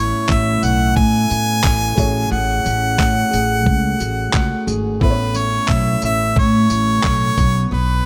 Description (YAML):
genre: acoustic pop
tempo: 89 BPM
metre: 4/4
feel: swing 55% on 16ths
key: unclear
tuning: A4 = 442 Hz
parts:
  - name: bright harmonica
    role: melody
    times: 0.0-8.1 s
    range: B4 to G#5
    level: -22 LUFS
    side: equal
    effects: delay
  - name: felt-muted upright piano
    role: accompaniment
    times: 0.0-7.4 s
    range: A3 to C#5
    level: -32 LUFS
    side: equal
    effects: none
  - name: picked steel-string acoustic guitar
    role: accompaniment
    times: 0.0-8.1 s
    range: A2 to C#5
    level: -25 LUFS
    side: equal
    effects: none
  - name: upright bass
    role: bass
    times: 0.0-8.0 s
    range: G#1 to A2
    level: -22 LUFS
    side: equal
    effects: none
  - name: dusty soul sampler-style drum kit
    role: drums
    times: 0.3-7.5 s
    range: handclaps, kick drum, tambourine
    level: -21 LUFS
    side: equal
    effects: none
room: little or no reverb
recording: none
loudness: -17 LUFS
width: mono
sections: 0.0-8.1 A section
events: none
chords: 0.0 Aadd9; 2.0 F#madd9/A; 5.0 Aadd9; 7.4 Bsus2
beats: 0.29 0.96 1.64 | 2.32 2.99 3.67 4.34 | 5.02 5.69 6.37 7.04 | 7.71